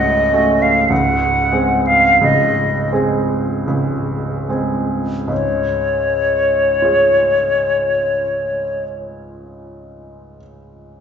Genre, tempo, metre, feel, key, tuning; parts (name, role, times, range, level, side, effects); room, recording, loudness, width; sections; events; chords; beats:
classical, romantic duo for flute and grand piano; 35-52 BPM; 3/4; rubato; Db major; A4 = 439 Hz
bright concert flute; melody; 0.0-8.8 s; Db5 to Gb5; -14 LUFS; left 1 dB
bright baby grand piano; accompaniment; 0.0-11.0 s; Db1 to Db5; -19 LUFS; right 1 dB
wet recital hall reverb, RT60 1.6 s; recorded in a church or concert hall, nothing above 7.7 kHz; -14 LUFS; side -7 dB against mid
0.0-5.3 A section; 5.3-9.9 B section
slowing down 0.0-5.3
0.0 Gbm/Db; 0.9 Ab/Db; 5.3 Db
| 0.90 2.20 3.67 | 5.30 6.82 8.35